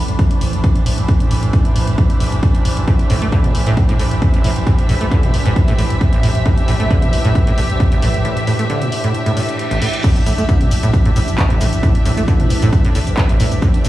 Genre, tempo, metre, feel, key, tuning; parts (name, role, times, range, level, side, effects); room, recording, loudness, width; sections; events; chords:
driving peak-time techno; 134 BPM; 4/4; straight; A minor; A4 = 439 Hz
growling 808-style bass; bass; 0.0-13.9 s; A1; -20 LUFS; equal; tube saturation, sidechain pumping, low-pass filter
overtone-sweeping drone; drone; 0.0-13.9 s; A2 to E3; -22 LUFS; right 1 dB; chorus, built-in reverb, sidechain pumping
muted studio string section; texture; 0.0-13.9 s; D4 to E5; -24 LUFS; right 1 dB; sidechain pumping
punchy analog drum machine; drums; 0.1-13.9 s; crash cymbal, handclaps, hi-hat, shaker; -28 LUFS; left 1 dB; overdrive
electronic kick drum; drums; 0.2-13.7 s; -14 LUFS; equal; overdrive
acid bass, saw; riff; 2.9-13.9 s; A1 to A3; -19 LUFS; equal; analog chorus, sidechain pumping, tape echo
reverse cymbal; sound effects; 9.4-10.0 s; -26 LUFS; right 2 dB
little or no reverb; played on a big sound system in a bare room, stone room reverb, small room ambience; -13 LUFS; side -15 dB against mid
0.0-10.0 A section; 10.0-13.9 B section
fade-in on string section 0.0-10.0; break 8.2-10.0; reverse cymbal 9.4-10.0; drop 10.0-13.9
0.0 Am